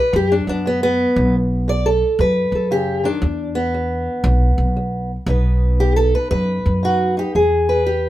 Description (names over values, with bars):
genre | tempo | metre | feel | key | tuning
acoustic country blues, solo or duo | 116 BPM | 4/4 | swing 65% on 8ths | unclear | A4 = 439 Hz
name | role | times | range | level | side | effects
fingerpicked old ladder-braced acoustic guitar | melody | 0.0-8.1 s | E2 to D5 | -18 LUFS | equal | none
upright bass | bass | 0.1-8.1 s | B1 to F#2 | -19 LUFS | equal | none
room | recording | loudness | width
light reverb | minimal, uncompressed stereo recording | -15 LUFS | side -14 dB against mid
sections
0.0-7.3 A section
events
steel-string acoustic guitar solo 0.0-7.3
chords
0.0 B5; 3.2 E5; 5.3 B; 7.3 E